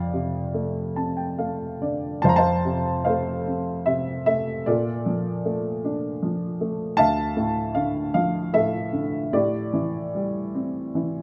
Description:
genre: classical, lyrical solo piano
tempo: 76 BPM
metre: 3/4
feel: uneven beats, rubato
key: F major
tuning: A4 = 440 Hz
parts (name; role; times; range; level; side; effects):
- dark upright piano; solo; 0.0-11.2 s; D2 to Bb5; -25 LUFS; equal; none
room: moderate scoring stage reverb, RT60 1.8 s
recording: close, detailed microphones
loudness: -25 LUFS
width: mono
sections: 0.0-2.2 A section; 2.2-11.2 A section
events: upright piano fill 0.5-2.2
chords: 0.0 F6; 2.2 F; 4.7 Bbmaj7; 7.0 Dmadd9; 9.3 Am7

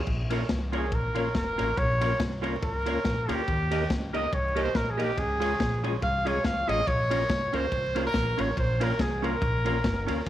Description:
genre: ska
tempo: 141 BPM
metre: 4/4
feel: swing 56% on 8ths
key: Bb dorian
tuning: A4 = 439 Hz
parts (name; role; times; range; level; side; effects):
- upright bass; bass; 0.1-10.3 s; F1 to Eb2; -31 LUFS; equal; none
- crunchy breakbeat drum kit; drums; 0.1-10.3 s; crash cymbal, kick drum, ride cymbal, snare drum; -31 LUFS; left 1 dB; slapback echo
- vintage hollow-body jazz guitar; accompaniment; 0.3-10.2 s; Db4 to Eb5; -34 LUFS; right 7 dB; slapback echo
- percussive tonewheel organ; stabs; 0.3-10.2 s; Ab3 to Bb4; -34 LUFS; left 6 dB; chorus vibrato, fast rotary speaker
- warm trumpet; melody; 0.8-10.3 s; G4 to F5; -29 LUFS; equal; none
room: moderate spring reverb, RT60 2.3 s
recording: 1960s-style stereo with parts hard left and right, vinyl crackle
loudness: -24 LUFS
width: side -12 dB against mid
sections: 0.1-10.3 A section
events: trumpet solo 0.1-10.3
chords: 0.1 Bbm; 3.5 Eb; 5.2 Db; 6.9 Bbm

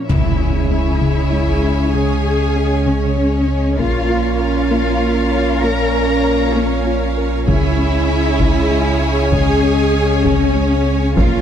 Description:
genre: cinematic, hybrid orchestral and electronic film score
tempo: 65 BPM (dotted quarters)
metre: 6/8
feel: straight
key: unclear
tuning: A4 = 440 Hz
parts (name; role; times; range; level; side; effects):
- warm symphonic violin section; melody; 0.0-11.4 s; C#5 to A#5; -28 LUFS; left 4 dB; none
- chorused pulse-width pad; sustained chords; 0.0-11.4 s; G#3 to C#5; -24 LUFS; right 2 dB; none
- warm studio cello section; bass; 0.0-11.4 s; C#4 to A#4; -21 LUFS; equal; none
- rich symphonic violin section; second line; 0.1-11.4 s; C#5 to G#5; -27 LUFS; equal; none
- warm symphonic viola section; accompaniment; 0.1-11.4 s; C#4 to A#4; -25 LUFS; right 2 dB; none
- clear trombone section; sustained chords; 0.1-11.4 s; A#2 to C#3; -22 LUFS; equal; none
- mellow French horn section; sustained chords; 0.1-11.4 s; G#3 to C#4; -24 LUFS; left 1 dB; none
- soft round pluck; arpeggios; 0.1-11.4 s; C#3 to A#4; -24 LUFS; left 3 dB; chorus, digital delay
- punchy sub bass; bass; 0.1-11.4 s; A#1 to C#2; -20 LUFS; equal; none
- taiko ensemble; drums; 0.1-11.4 s; none; -20 LUFS; equal; none
- impact; sound effects; 0.1-1.9 s; none; -22 LUFS; equal; none
room: wet scoring stage reverb, RT60 1.8 s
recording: none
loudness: -13 LUFS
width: side -9 dB against mid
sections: 0.1-11.4 A section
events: impact 0.1-1.9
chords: 0.1 C#m; 3.8 A#m; 7.5 C#m

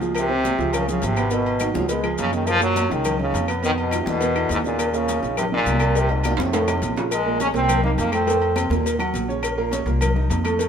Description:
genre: latin, salsa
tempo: 207 BPM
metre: 4/4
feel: straight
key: Bb minor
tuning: A4 = 440 Hz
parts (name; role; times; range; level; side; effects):
- clear baby grand piano; accompaniment; 0.0-10.7 s; A2 to Gb5; -25 LUFS; right 4 dB; none
- upright bass; bass; 0.0-10.7 s; Ab1 to Gb2; -25 LUFS; left 1 dB; none
- congas; percussion; 0.0-10.7 s; none; -30 LUFS; equal; none
- maracas; percussion; 0.0-10.7 s; none; -37 LUFS; left 5 dB; none
- agogo bells and timbales; percussion; 0.1-10.7 s; none; -30 LUFS; equal; none
- bright trombone; melody; 0.2-8.7 s; Ab2 to Db4; -23 LUFS; left 1 dB; none
- claves; percussion; 0.2-10.6 s; none; -37 LUFS; left 11 dB; none
- cowbell; percussion; 0.2-10.7 s; none; -31 LUFS; left 5 dB; none
- clear trombone section; second line; 1.6-2.1 s; Eb3 to Ab3; -32 LUFS; left 4 dB; none
room: moderate plate reverb, RT60 2.8 s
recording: minimal, uncompressed stereo recording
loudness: -19 LUFS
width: side -7 dB against mid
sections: 0.0-7.1 A section; 7.1-10.7 B section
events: drum fill 6.4-7.1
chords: 0.2 Dbmaj7; 1.3 Abm7; 1.9 Db7; 2.5 Gb6; 3.6 Dm69; 4.2 E5; 4.8 Eb5; 6.0 Cm7b5; 6.5 F7; 7.1 Bbm7; 7.7 Cm7; 8.3 F7; 8.9 Ebm; 9.4 Bbm; 10.0 F7/C

